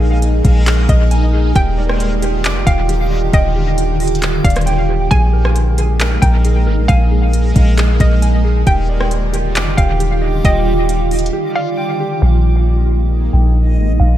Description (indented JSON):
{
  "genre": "hip hop, atmospheric cloud-rap",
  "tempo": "135 BPM",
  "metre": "4/4",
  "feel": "half-time",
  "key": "Eb major",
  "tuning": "A4 = 440 Hz",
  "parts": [
    { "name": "hollow square pluck", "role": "melody", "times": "0.0-14.2 s", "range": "Eb5 to Ab5", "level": "-24 LUFS", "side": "equal", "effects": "chorus, low-pass filter, dub echo" },
    { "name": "shimmering ambient pad", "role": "sustained chords", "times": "0.0-14.2 s", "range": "D3 to G4", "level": "-20 LUFS", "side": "right 1 dB", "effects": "chorus, built-in reverb, sidechain pumping, low-pass filter" },
    { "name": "mellow electric guitar", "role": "arpeggios", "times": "0.0-12.2 s", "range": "G4 to D6", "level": "-24 LUFS", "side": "right 3 dB", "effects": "low-pass filter, dub echo" },
    { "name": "soft 808-style bass", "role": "bass", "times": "0.0-14.2 s", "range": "Eb1 to Bb1", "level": "-14 LUFS", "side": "equal", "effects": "none" },
    { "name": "downlifter", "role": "sound effects", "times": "0.0-1.6 s", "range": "none", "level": "-39 LUFS", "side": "left 2 dB", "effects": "none" },
    { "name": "backwards swelling texture", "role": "texture", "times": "0.0-14.2 s", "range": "G3 to D6", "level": "-27 LUFS", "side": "equal", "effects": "built-in reverb" },
    { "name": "smooth R&B drum kit", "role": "drums", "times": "0.2-11.3 s", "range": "handclaps, hi-hat, kick drum, rim click", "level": "-16 LUFS", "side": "equal", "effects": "none" }
  ],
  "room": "little or no reverb",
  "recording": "echo-heavy mix",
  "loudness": "-12 LUFS",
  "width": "side -12 dB against mid",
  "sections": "0.0-12.2 A section; 12.2-14.2 B section",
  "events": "break 11.3-12.2; filter sweep 12.2-14.2",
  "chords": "0.0 Bb7sus4; 1.6 Ebmaj9; 5.1 Bb7sus4; 8.7 Ebmaj9; 12.2 Bb7sus4",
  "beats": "0.22 0.67 1.11 | 1.56 2.00 2.45 2.89 | 3.33 3.78 4.22 4.67 | 5.11 5.56 6.00 6.45 | 6.89 7.33 7.78 8.22 | 8.67 9.11 9.56 10.00 | 10.45 10.89 11.34 11.78 | 12.22 12.67 13.11 13.56 | 14.00"
}